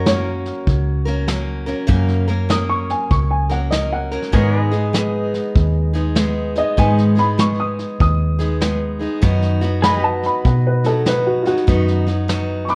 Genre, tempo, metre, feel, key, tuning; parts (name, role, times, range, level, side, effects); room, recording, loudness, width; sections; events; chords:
honky-tonk and classic country; 98 BPM; 4/4; swing 64% on 8ths; B major; A4 = 440 Hz
dark upright piano; second line; 0.0-12.8 s; E#4 to D#6; -23 LUFS; equal
picked steel-string acoustic guitar; accompaniment; 0.0-12.8 s; F#2 to A#4; -24 LUFS; equal
pedal steel guitar; sustained chords; 0.0-12.8 s; F#4 to D#5; -31 LUFS; equal
vintage muted fingered electric bass; bass; 0.0-12.7 s; C#2 to B2; -22 LUFS; equal
vintage brush drum kit; drums; 0.1-12.7 s; hi-hat, kick drum, snare drum; -23 LUFS; equal
light reverb; worn, warbling old tape, cassette tape, warbly pitch drift; -18 LUFS; mono
0.0-12.8 A section
upright piano solo 0.0-12.8
0.0 F#; 4.3 G#m; 9.2 B/F#